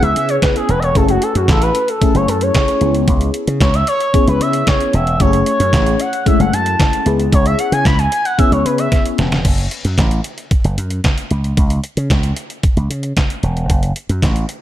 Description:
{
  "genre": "early-eighties boogie funk",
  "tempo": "113 BPM",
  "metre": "4/4",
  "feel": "straight",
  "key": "F# minor",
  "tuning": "A4 = 440 Hz",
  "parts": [
    { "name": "expressive portamento lead", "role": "melody", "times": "0.0-9.0 s", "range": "F#4 to B5", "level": "-17 LUFS", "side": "equal", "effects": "chorus, tape echo" },
    { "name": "FM electric piano with soft pad layer", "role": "accompaniment", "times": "0.0-9.2 s", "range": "G#3 to G#4", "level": "-19 LUFS", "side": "left 4 dB", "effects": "chorus, phaser" },
    { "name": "slap bass with an envelope filter", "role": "bass", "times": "0.0-14.4 s", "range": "E1 to C#3", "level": "-16 LUFS", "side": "equal", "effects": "none" },
    { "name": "detuned 8-bit digital drum machine", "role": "drums", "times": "0.0-14.6 s", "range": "crash cymbal, handclaps, hi-hat, kick drum, snare drum", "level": "-16 LUFS", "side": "equal", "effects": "none" }
  ],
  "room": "light reverb, digital ambience",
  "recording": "none",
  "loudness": "-13 LUFS",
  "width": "side -12 dB against mid",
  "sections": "0.0-9.4 A section; 9.4-14.6 B section",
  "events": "analog synth lead solo 0.0-9.4; drum fill 8.9-9.4",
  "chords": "0.0 C#m7; 1.0 F#m7; 2.8 C#m7; 5.2 F#m7; 7.1 C#m7; 9.4 F#m; 11.3 N.C.; 13.7 F#m"
}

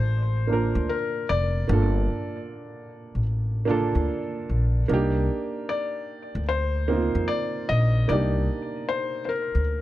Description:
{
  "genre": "lo-fi hip hop",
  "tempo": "75 BPM",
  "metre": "4/4",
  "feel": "swing 64% on 16ths",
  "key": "G minor",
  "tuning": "A4 = 440 Hz",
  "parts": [
    { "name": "felt-muted upright piano", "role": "melody", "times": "0.0-9.8 s", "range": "Bb4 to Eb5", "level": "-29 LUFS", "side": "left 4 dB", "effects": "low-pass filter, analog delay" },
    { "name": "dark upright piano", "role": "accompaniment", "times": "0.0-9.8 s", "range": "Bb3 to Bb4", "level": "-28 LUFS", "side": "right 3 dB", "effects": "cassette tape, low-pass filter" },
    { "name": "upright bass", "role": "bass", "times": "0.0-9.8 s", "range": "F1 to F2", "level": "-23 LUFS", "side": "equal", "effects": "none" }
  ],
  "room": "light reverb",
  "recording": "dark, warm production",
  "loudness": "-22 LUFS",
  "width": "side -15 dB against mid",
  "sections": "0.0-9.8 A section",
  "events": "none",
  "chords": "0.0 Gm9 (rootless); 4.9 Cm9"
}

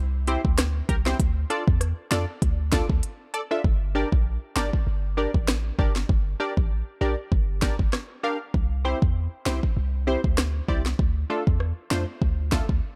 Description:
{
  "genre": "dancehall",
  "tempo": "98 BPM",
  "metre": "4/4",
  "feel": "swing 56% on 16ths",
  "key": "unclear",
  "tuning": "A4 = 440 Hz",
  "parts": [
    { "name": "warm 808-style bass", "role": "bass", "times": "0.0-12.8 s", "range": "G1 to F2", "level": "-28 LUFS", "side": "equal", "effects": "none" },
    { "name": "punchy chord stab", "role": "accompaniment", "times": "0.3-12.7 s", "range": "A3 to F5", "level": "-32 LUFS", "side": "equal", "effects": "chorus" },
    { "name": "afro-pop drum kit", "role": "drums", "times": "0.3-12.8 s", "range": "hi-hat, kick drum, rim click, snare drum", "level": "-26 LUFS", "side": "equal", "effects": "none" }
  ],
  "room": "digital ambience",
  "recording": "dark, warm production",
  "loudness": "-25 LUFS",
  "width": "mono",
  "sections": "0.0-3.6 A section; 3.6-13.0 B section",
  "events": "none",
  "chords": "0.0 C; 1.2 Dm; 3.6 Gm; 8.5 C; 11.0 Dm"
}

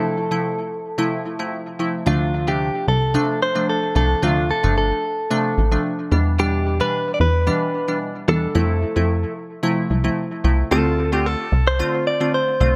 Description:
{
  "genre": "afrobeats",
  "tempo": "111 BPM",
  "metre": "4/4",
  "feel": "straight",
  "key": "D dorian",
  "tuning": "A4 = 440 Hz",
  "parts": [
    { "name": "direct-recorded clean electric guitar", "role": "melody", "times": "0.0-12.8 s", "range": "F4 to D5", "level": "-24 LUFS", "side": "equal", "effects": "analog delay" },
    { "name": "glassy wavetable pluck", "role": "accompaniment", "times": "0.0-12.8 s", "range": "B2 to F4", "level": "-25 LUFS", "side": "equal", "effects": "chorus, analog delay" },
    { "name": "plucky analog bass", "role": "bass", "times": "2.1-12.8 s", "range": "G1 to F2", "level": "-21 LUFS", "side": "equal", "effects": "none" }
  ],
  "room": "light reverb, digital ambience",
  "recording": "echo-heavy mix",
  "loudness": "-20 LUFS",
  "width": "mono",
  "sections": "0.0-2.1 A section; 2.1-10.7 B section; 10.7-12.8 C section",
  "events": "none",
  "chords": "0.0 Fmaj7; 2.1 Dm7; 6.1 Em7; 8.6 Fmaj7; 10.7 Dm7"
}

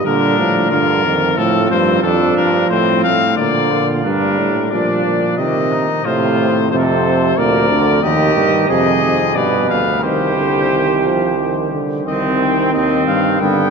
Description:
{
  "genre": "classical, imitative canzona for brass ensemble",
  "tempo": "90 BPM",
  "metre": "3/4",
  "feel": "straight",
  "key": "C minor from 8.0 s",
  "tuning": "A4 = 440 Hz",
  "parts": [
    { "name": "clear trumpet", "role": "melody", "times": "0.0-13.7 s", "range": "A4 to G5", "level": "-19 LUFS", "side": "left 8 dB", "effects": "none" },
    { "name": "warm euphonium", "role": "bass", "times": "0.0-13.7 s", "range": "C2 to C3", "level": "-19 LUFS", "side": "right 2 dB", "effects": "none" },
    { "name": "warm trumpet", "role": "second line", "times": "0.1-13.7 s", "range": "Bb3 to B4", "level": "-20 LUFS", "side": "right 3 dB", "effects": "none" },
    { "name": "clear trombone", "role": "accompaniment", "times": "0.1-13.7 s", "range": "Bb2 to G3", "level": "-18 LUFS", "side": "right 2 dB", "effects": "none" }
  ],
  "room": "wet cathedral reverb, RT60 4.8 s",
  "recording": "none",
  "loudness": "-13 LUFS",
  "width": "side -5 dB against mid",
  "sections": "0.0-4.0 A section; 4.0-12.1 B section; 12.1-13.7 A section",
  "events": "none",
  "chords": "0.1 Bb; 1.4 F/A; 2.0 F; 3.4 Bb; 4.0 Gm; 5.4 Cm; 6.1 F/A; 7.4 Bb/D; 8.0 Eb; 8.7 Fm; 9.4 G; 10.0 Cm"
}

